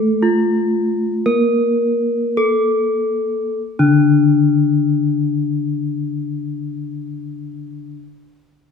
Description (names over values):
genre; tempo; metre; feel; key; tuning
gamelan; 47-62 BPM; 4/4; straight; unclear; A4 = 441 Hz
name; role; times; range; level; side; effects
gamelan-type bronze metallophone; melody; 0.0-8.0 s; D4 to Bb4; -18 LUFS; left 2 dB; none
gamelan-type bronze metallophone; accompaniment; 0.0-8.0 s; D3 to Bb3; -20 LUFS; left 1 dB; none
room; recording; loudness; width
moderate scoring stage reverb, RT60 1.9 s; minimal, uncompressed stereo recording; -15 LUFS; side -6 dB against mid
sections
0.0-3.6 A section; 3.6-8.7 B section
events
slowing down 0.0-3.6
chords
none